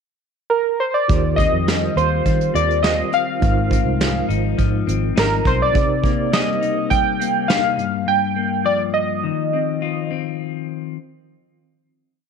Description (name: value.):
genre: indie pop, bedroom pop.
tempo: 103 BPM.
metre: 4/4.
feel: straight.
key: Eb major.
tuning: A4 = 440 Hz.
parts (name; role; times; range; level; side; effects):
warbly lo-fi synth keys; melody; 0.5-10.1 s; Bb4 to G5; -20 LUFS; right 2 dB; wide subtle chorus, slapback echo.
clean electric guitar; accompaniment; 1.1-11.0 s; G2 to F4; -23 LUFS; left 13 dB; lush chorus, warbly pitch drift.
reed electric piano; accompaniment; 1.1-7.8 s; C3 to C5; -28 LUFS; right 13 dB; fast tremolo, cassette tape.
vintage muted fingered electric bass; bass; 1.1-5.7 s; Ab1 to Eb3; -22 LUFS; right 1 dB; none.
soft brush drum kit; drums; 1.1-7.9 s; hi-hat, kick drum, snare drum; -21 LUFS; right 1 dB; none.
room: light reverb, small room reverb.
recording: 1960s-style stereo with parts hard left and right.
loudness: -17 LUFS.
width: side -6 dB against mid.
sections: 0.0-1.1 pickup bar; 1.1-10.4 A section.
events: none.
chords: 0.0 N.C.; 1.1 Eb69; 3.4 Ab6; 5.8 Cm7; 7.8 Gm7; 9.2 Ebsus2.